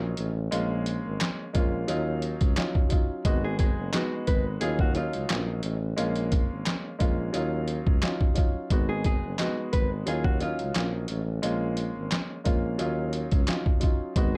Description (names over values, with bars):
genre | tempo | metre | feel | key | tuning
hip hop, boom-bap hip-hop | 88 BPM | 4/4 | swing 54% on 16ths | unclear | A4 = 440 Hz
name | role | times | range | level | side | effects
dark upright piano | accompaniment | 0.0-14.4 s | F#3 to F#4 | -34 LUFS | equal | high-pass filter, low-pass filter, plate reverb
warm tuba | bass | 0.0-14.4 s | F#1 to D#2 | -33 LUFS | equal | none
trip hop sampler-style drum kit | drums | 0.2-14.3 s | handclaps, hi-hat, kick drum, snare drum | -28 LUFS | equal | overdrive
finger snaps | percussion | 1.2-8.2 s | none | -41 LUFS | equal | none
nylon-string guitar | melody | 3.4-10.9 s | E#4 to B4 | -37 LUFS | equal | high-pass filter, low-pass filter, plate reverb, tape echo
room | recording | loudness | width
light reverb | dark, warm production | -27 LUFS | mono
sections
0.0-8.7 A section; 8.7-14.4 B section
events
none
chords
0.0 D#m9; 0.5 A#m7; 1.9 D#m9; 3.3 G#m7; 4.6 D#m9; 6.0 A#m7; 7.3 D#m9; 8.7 G#m7; 10.1 D#m9; 11.4 A#m7; 12.8 D#m9